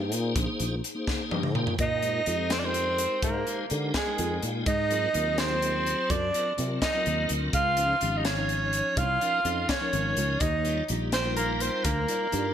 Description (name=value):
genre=electric jazz fusion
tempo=84 BPM (dotted quarters)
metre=6/8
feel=straight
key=unclear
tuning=A4 = 440 Hz
part: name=tonewheel organ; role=accompaniment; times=0.0-12.5 s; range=F3 to G5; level=-34 LUFS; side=left 2 dB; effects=slow rotary speaker, overdrive, chorus vibrato
part: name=sustaining fretless electric bass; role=bass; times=0.0-12.5 s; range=Ab1 to D3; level=-30 LUFS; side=equal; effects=ensemble chorus
part: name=crisp fusion drum kit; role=drums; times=0.1-12.4 s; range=hi-hat, kick drum, snare drum, toms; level=-31 LUFS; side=left 1 dB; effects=none
part: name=warm soprano saxophone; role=melody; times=1.8-12.5 s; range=Ab4 to F5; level=-28 LUFS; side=right 3 dB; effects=ping-pong delay
part: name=bright tenor saxophone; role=second line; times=1.8-12.5 s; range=Ab3 to F4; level=-33 LUFS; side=left 4 dB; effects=ping-pong delay
room=moderate lush hall reverb, RT60 1.8 s, small room ambience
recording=bright 1980s-style digital production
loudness=-24 LUFS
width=side -9 dB against mid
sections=0.0-1.8 A section; 1.8-12.5 B section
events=drum fill 1.1-1.8; tonewheel organ fill 1.1-1.8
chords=0.0 Bb9sus4; 1.8 Bb13sus4; 4.7 Ab13; 7.5 Dbmaj9; 10.4 Ebmaj9